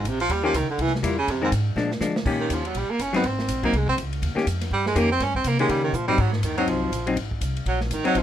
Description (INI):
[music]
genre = jazz, small-group swing and bop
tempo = 244 BPM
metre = 4/4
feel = swing 60% on 8ths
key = Eb mixolydian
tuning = A4 = 441 Hz
[part]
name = mellow baritone saxophone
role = second line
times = 0.0-8.2 s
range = G2 to Db4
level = -24 LUFS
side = right 3 dB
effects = none
[part]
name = upright bass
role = bass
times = 0.0-8.2 s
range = G1 to D3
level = -26 LUFS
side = equal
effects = none
[part]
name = open jazz drum kit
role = drums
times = 0.1-8.2 s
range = crash cymbal, hi-hat, kick drum, ride cymbal, snare drum, toms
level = -31 LUFS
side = equal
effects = none
[part]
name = hollow-body jazz guitar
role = accompaniment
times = 0.4-8.2 s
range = Eb3 to G4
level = -24 LUFS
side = left 4 dB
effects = none
[sound]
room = light reverb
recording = none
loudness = -21 LUFS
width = side -10 dB against mid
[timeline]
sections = 0.0-2.3 A section; 2.3-8.2 A section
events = baritone saxophone solo 0.0-8.2; drum fill 1.8-2.3, 5.9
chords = 0.3 Eb7; 0.8 C7; 1.3 Fm7; 1.8 Bb7; 2.3 Eb7; 3.2 Ab; 4.2 Eb7; 6.2 Ab7